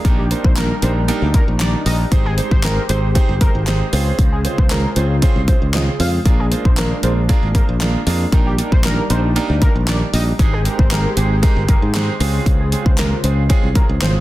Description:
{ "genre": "dance-pop", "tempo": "116 BPM", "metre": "4/4", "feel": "straight", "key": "Eb major", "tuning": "A4 = 440 Hz", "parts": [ { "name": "bright grand piano", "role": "accompaniment", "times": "0.0-14.2 s", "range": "Ab3 to C5", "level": "-24 LUFS", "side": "right 5 dB", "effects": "sidechain pumping" }, { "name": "warm analog pad", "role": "sustained chords", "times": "0.0-14.2 s", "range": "Db3 to C5", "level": "-27 LUFS", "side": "left 1 dB", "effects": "chorus, sidechain pumping" }, { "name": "modern bright fingered electric bass", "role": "bass", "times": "0.0-14.2 s", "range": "G1 to Ab2", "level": "-18 LUFS", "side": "equal", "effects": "sidechain pumping" }, { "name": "pop drum kit", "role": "drums", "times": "0.0-14.1 s", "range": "handclaps, hi-hat, kick drum, snare drum", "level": "-16 LUFS", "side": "equal", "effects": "none" }, { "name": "fat analog lead", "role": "melody", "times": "0.2-14.1 s", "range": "G4 to F5", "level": "-27 LUFS", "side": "left 1 dB", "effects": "chorus, digital delay" } ], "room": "digital ambience", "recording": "dense, heavily limited modern master", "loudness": "-14 LUFS", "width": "side -16 dB against mid", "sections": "0.0-14.2 A section", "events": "none", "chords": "0.0 Ebmaj7/Bb; 2.1 Abmaj7; 3.9 Dbmaj7; 6.3 Bb7; 8.3 Ebmaj7/Bb; 10.4 Abmaj7; 12.2 Dbmaj7" }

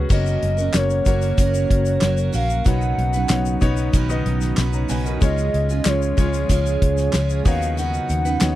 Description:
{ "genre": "piano-driven pop", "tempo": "94 BPM", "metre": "4/4", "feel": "straight", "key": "F# major", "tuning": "A4 = 440 Hz", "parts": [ { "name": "clear baby grand piano", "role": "accompaniment", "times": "0.0-8.6 s", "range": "B2 to A#5", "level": "-28 LUFS", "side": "left 6 dB", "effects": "none" }, { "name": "airy breathy pad", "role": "sustained chords", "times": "0.0-8.6 s", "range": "C#3 to A#4", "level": "-30 LUFS", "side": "equal", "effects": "chorus" }, { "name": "picked steel-string acoustic guitar", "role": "riff", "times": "0.0-8.6 s", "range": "B2 to B4", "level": "-28 LUFS", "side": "right 8 dB", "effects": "none" }, { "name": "vintage muted fingered electric bass", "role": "bass", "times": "0.0-8.6 s", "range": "F#1 to D#2", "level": "-22 LUFS", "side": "equal", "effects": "none" }, { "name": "hollow clarinet-like synth lead", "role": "melody", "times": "0.1-8.6 s", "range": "C#5 to F#5", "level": "-24 LUFS", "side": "equal", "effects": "chorus, slapback echo" }, { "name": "damped 70s drum kit", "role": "drums", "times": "0.1-8.6 s", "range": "crash cymbal, handclaps, hi-hat, kick drum, snare drum", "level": "-19 LUFS", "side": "equal", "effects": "none" }, { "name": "tube shaker", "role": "percussion", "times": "0.1-8.6 s", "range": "none", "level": "-38 LUFS", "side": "left 19 dB", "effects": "none" } ], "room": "little or no reverb", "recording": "dry, close 1970s-style studio recording", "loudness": "-17 LUFS", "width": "side -14 dB against mid", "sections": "0.1-8.6 A section", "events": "none", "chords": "0.1 F#; 2.7 Badd9; 5.2 C#; 7.5 Badd9/D#" }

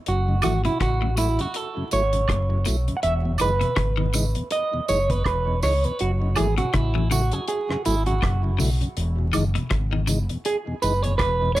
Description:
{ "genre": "roots reggae", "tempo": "81 BPM", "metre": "4/4", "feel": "swing 58% on 16ths", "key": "E major", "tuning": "A4 = 440 Hz", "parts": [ { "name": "semi-hollow electric guitar", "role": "accompaniment", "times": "0.1-11.6 s", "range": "E4 to F#5", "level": "-25 LUFS", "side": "right 3 dB", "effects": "spring reverb, dub echo" }, { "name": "fingered electric bass", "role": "bass", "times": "0.1-11.6 s", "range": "E1 to C#2", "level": "-23 LUFS", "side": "equal", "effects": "none" }, { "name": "deep reggae drum kit", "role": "drums", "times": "0.1-11.6 s", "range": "hi-hat, kick drum, rim click", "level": "-28 LUFS", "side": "equal", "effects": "none" }, { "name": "mellow tonewheel organ", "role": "accompaniment", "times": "0.3-11.6 s", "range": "E2 to E4", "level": "-31 LUFS", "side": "left 1 dB", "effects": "slow rotary speaker, dub echo" }, { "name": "clean electric guitar", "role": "arpeggios", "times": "0.4-10.2 s", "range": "G#2 to E3", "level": "-28 LUFS", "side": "left 4 dB", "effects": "none" }, { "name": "tambourine and woodblock", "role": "percussion", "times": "0.4-11.6 s", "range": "none", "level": "-31 LUFS", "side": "right 8 dB", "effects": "none" } ], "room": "light reverb", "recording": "vinyl crackle", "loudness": "-20 LUFS", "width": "side -15 dB against mid", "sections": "0.0-11.6 A section", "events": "clean electric guitar solo 0.0-11.6", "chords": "0.1 F#m7; 3.0 Emaj7; 6.0 F#m7; 9.0 Emaj7" }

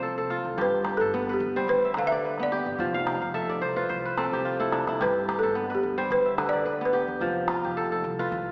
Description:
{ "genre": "west african traditional, West African string and xylophone music", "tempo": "108 BPM", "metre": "4/4", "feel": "swing 54% on 16ths", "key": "G mixolydian", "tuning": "A4 = 442 Hz", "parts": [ { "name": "kora", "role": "arpeggios", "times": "0.0-8.5 s", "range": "G2 to G5", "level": "-30 LUFS", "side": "equal", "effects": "none" }, { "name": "upright bass", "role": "bass", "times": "0.0-8.5 s", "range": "F1 to D2", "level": "-42 LUFS", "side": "equal", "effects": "none" }, { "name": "calabash", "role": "percussion", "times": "0.3-8.5 s", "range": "none", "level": "-37 LUFS", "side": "equal", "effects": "none" }, { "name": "balafon", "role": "melody", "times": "0.6-8.2 s", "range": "G4 to F5", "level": "-29 LUFS", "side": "equal", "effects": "none" } ], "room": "wet scoring stage reverb, RT60 2.0 s", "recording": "recorded in a church or concert hall, small speaker sound", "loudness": "-27 LUFS", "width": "mono", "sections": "0.0-8.5 A section", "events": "balafon solo 0.0-8.5; kora fill 2.9-5.0; drum fill 4.3-5.0", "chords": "0.0 F; 0.6 G; 2.8 F; 5.0 G; 7.2 F" }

